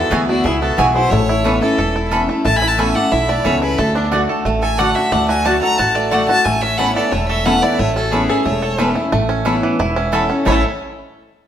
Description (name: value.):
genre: bluegrass.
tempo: 180 BPM.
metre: 4/4.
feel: straight.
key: A major.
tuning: A4 = 440 Hz.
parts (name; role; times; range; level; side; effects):
clear fiddle; melody; 0.0-10.6 s; D4 to B5; -20 LUFS; left 1 dB; none.
lap resonator guitar; second line; 0.0-10.6 s; B3 to G#5; -25 LUFS; left 2 dB; none.
picked steel-string acoustic guitar; accompaniment; 0.0-10.6 s; E2 to F#4; -20 LUFS; left 2 dB; none.
bluegrass banjo; arpeggios; 0.0-10.7 s; E3 to A4; -20 LUFS; right 3 dB; none.
mandolin; stabs; 0.1-10.6 s; A3 to B5; -23 LUFS; right 1 dB; none.
upright bass; bass; 0.1-10.6 s; E1 to D2; -22 LUFS; equal; none.
room: wet stone room reverb, RT60 1.3 s.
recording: band playing live in one room.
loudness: -14 LUFS.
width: side -10 dB against mid.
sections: 0.0-9.1 A section; 9.1-10.5 B section; 10.5-11.5 C section.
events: none.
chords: 0.0 Eadd9; 1.1 Aadd9; 3.8 D; 6.5 Aadd9.